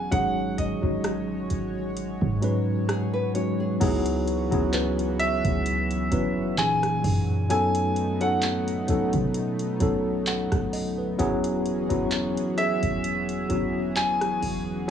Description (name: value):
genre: contemporary R&B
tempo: 65 BPM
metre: 4/4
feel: swing 54% on 16ths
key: C# minor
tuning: A4 = 440 Hz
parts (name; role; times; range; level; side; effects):
- clear concert grand piano; melody; 0.0-14.9 s; D#5 to G#5; -28 LUFS; right 1 dB; cassette tape, analog delay
- mellow tine electric piano; accompaniment; 0.0-14.9 s; A#2 to F#5; -26 LUFS; left 1 dB; medium stereo tremolo
- chorused pulse-width pad; sustained chords; 0.0-14.9 s; A#2 to C#5; -35 LUFS; right 3 dB; none
- warm 808-style bass; bass; 0.0-14.9 s; E1 to B2; -30 LUFS; right 1 dB; none
- booming analog drum machine; drums; 0.1-14.7 s; crash cymbal, handclaps, hi-hat, kick drum, rim click; -31 LUFS; right 1 dB; cassette tape
- nylon-string guitar; arpeggios; 2.9-4.0 s; G#4 to C#5; -33 LUFS; left 2 dB; analog delay
- kalimba; texture; 4.7-14.9 s; G#4 to C#5; -38 LUFS; right 4 dB; none
room: light reverb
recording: home recording on cassette, studio ambience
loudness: -23 LUFS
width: side -8 dB against mid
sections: 0.0-3.8 A section; 3.8-14.9 B section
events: none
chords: 0.1 G#7sus4; 3.8 C#m11; 6.6 F#13; 7.5 B7; 11.2 E69